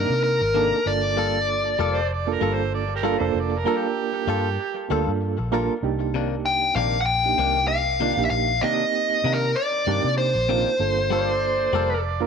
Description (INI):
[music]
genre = blues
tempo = 97 BPM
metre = 4/4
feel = swing 55% on 16ths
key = G minor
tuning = A4 = 440 Hz
[part]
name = dark smooth lead guitar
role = melody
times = 0.0-2.1, 6.5-12.0 s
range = Bb4 to G5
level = -22 LUFS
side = left 1 dB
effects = overdrive
[part]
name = reed electric piano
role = accompaniment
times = 0.0-12.3 s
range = Bb3 to Bb4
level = -27 LUFS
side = right 12 dB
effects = fast tremolo
[part]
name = direct-recorded clean electric guitar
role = stabs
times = 0.0-11.9 s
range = C3 to A4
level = -30 LUFS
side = left 10 dB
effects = tape echo
[part]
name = vintage muted fingered electric bass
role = bass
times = 0.0-12.3 s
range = F1 to C3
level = -27 LUFS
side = equal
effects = none
[part]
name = overdriven harmonica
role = second line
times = 1.9-5.0, 11.1-12.3 s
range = G4 to D5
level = -28 LUFS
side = right 10 dB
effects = none
[sound]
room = moderate spring reverb, RT60 2.1 s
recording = 1960s-style stereo with parts hard left and right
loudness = -20 LUFS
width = side -6 dB against mid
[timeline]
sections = 0.0-12.3 A section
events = none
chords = 0.0 Cm9; 0.9 Gm9; 5.8 Cm9; 10.8 Gm9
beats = 0.24 | 0.86 1.49 2.10 2.73 | 3.35 3.97 4.59 5.21 | 5.83 6.45 7.07 7.70 | 8.32 8.94 9.56 10.18 | 10.80 11.42 12.04